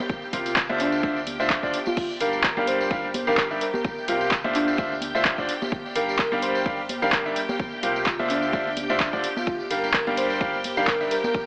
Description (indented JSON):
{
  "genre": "piano house",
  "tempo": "128 BPM",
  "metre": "4/4",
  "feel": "swing 55% on 16ths",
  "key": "G dorian",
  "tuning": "A4 = 440 Hz",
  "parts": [
    { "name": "string machine, violins", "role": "sustained chords", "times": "0.0-11.5 s", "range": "G4 to G5", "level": "-36 LUFS", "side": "equal", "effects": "ensemble chorus, sidechain pumping" },
    { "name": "congas and tambourine", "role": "percussion", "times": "0.0-11.5 s", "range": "none", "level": "-38 LUFS", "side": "equal", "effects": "dub echo" },
    { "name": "electronic kick drum", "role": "drums", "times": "0.1-11.4 s", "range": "none", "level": "-32 LUFS", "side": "equal", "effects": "none" },
    { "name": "airy dreamy lead", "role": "melody", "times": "0.3-11.3 s", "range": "D4 to C5", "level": "-31 LUFS", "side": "equal", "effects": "chorus, dub echo" },
    { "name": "bright concert grand piano", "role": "riff", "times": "0.3-11.1 s", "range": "C3 to F5", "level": "-28 LUFS", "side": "equal", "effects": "sidechain pumping, dub echo" },
    { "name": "organ-like FM bass", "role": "bass", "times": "0.3-11.1 s", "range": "G1 to D2", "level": "-45 LUFS", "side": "equal", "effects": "tube saturation, sidechain pumping" },
    { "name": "punchy analog drum machine", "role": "drums", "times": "0.3-11.2 s", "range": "crash cymbal, handclaps, hi-hat, ride cymbal", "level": "-29 LUFS", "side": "equal", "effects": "none" }
  ],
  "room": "moderate spring reverb, RT60 2.4 s",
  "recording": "echo-heavy mix, AM radio sound",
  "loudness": "-24 LUFS",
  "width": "mono",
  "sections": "0.0-11.5 A section",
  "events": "none",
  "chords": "0.1 C7sus4; 0.8 Dm9; 2.0 Gm7; 3.8 C7sus4; 4.5 Dm9; 5.7 Gm7; 7.6 C7sus4; 8.3 Dm9; 9.5 Gm7",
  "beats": "| 0.10 0.56 1.03 1.50 | 1.97 2.44 2.91 3.38 | 3.85 4.31 4.78 5.25 | 5.72 6.19 6.66 7.13 | 7.60 8.06 8.53 9.00 | 9.47 9.94 10.41 10.88 | 11.35"
}